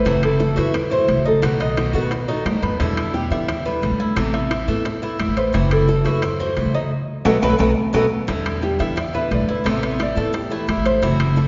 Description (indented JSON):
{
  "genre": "latin, Cuban son and guajira",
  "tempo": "175 BPM",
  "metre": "4/4",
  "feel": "straight",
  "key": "E minor",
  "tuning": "A4 = 440 Hz",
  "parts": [
    { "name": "nylon-string guitar", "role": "melody", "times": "0.0-2.4, 5.4-11.0 s", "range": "G4 to E5", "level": "-25 LUFS", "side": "equal", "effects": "none" },
    { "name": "picked steel-string acoustic guitar", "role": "accompaniment", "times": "0.0-11.5 s", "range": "B2 to F#4", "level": "-27 LUFS", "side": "equal", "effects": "none" },
    { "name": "Cuban tres", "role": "arpeggios", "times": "0.0-11.5 s", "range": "D#4 to E5", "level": "-28 LUFS", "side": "equal", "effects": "none" },
    { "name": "upright bass", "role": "bass", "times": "0.0-11.5 s", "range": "F#1 to E3", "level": "-25 LUFS", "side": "equal", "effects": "none" },
    { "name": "bongos", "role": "percussion", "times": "0.1-11.5 s", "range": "none", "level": "-34 LUFS", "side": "equal", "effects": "none" },
    { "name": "congas", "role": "percussion", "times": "0.1-11.5 s", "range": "none", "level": "-30 LUFS", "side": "equal", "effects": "none" },
    { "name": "timbales", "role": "percussion", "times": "0.1-11.4 s", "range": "none", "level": "-33 LUFS", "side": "equal", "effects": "none" },
    { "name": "claves", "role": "percussion", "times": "0.2-11.4 s", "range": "none", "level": "-43 LUFS", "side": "equal", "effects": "none" }
  ],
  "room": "wet concert hall reverb, RT60 1.8 s",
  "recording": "recorded in a church or concert hall, nothing above 7.5 kHz",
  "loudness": "-20 LUFS",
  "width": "mono",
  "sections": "0.0-8.3 A section; 8.3-11.5 B section",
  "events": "band accent 6.9-8.3; drum fill 7.6-8.3",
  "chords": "0.1 F#m7b5; 1.4 B7; 2.8 Em7; 4.2 Amadd9; 5.5 F#m7b5; 6.9 B7; 8.3 Em7; 9.7 Amadd9"
}